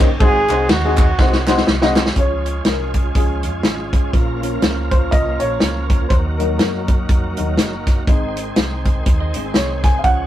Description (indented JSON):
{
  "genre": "uptempo gospel",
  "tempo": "122 BPM",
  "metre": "4/4",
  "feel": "swing 59% on 8ths",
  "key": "Db major",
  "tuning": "A4 = 440 Hz",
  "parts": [
    { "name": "warm upright piano", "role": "accompaniment", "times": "0.0-10.3 s", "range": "Ab2 to Ab5", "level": "-22 LUFS", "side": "left 2 dB", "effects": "none" },
    { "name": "bright tonewheel organ", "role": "sustained chords", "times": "0.0-10.3 s", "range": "Eb3 to Db5", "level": "-29 LUFS", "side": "right 2 dB", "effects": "slow rotary speaker, overdrive, chorus vibrato" },
    { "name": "hollow-body short-scale fingered electric bass", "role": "bass", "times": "0.0-10.3 s", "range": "Gb1 to Gb2", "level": "-23 LUFS", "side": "equal", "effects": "none" },
    { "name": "warm soul drum kit", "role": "drums", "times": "0.0-10.2 s", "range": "hi-hat, kick drum, ride cymbal, snare drum", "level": "-16 LUFS", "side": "equal", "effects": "none" },
    { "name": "group handclap", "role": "percussion", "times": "0.0-2.1 s", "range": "none", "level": "-29 LUFS", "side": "right 2 dB", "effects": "none" },
    { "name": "clear flugelhorn", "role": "melody", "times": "0.2-1.7 s", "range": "Gb4 to Ab4", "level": "-19 LUFS", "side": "right 2 dB", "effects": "none" },
    { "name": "warm French horn section", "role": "sustained chords", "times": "2.2-10.3 s", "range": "Eb3 to Ab4", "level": "-28 LUFS", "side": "right 2 dB", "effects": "none" },
    { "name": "clean electric guitar", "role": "second line", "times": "9.2-10.0 s", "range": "C4 to Eb5", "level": "-32 LUFS", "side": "right 5 dB", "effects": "none" }
  ],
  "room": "moderate small room reverb, RT60 0.5 s",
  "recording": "rough rehearsal-room recording",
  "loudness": "-14 LUFS",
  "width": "side -12 dB against mid",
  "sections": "0.0-2.2 A section; 2.2-10.3 B section",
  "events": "drum fill 1.2-2.2; upright piano solo 2.2-10.3",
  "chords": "0.2 Ab7; 2.2 Db; 4.1 Bbm; 6.1 Ebm; 8.1 Ab"
}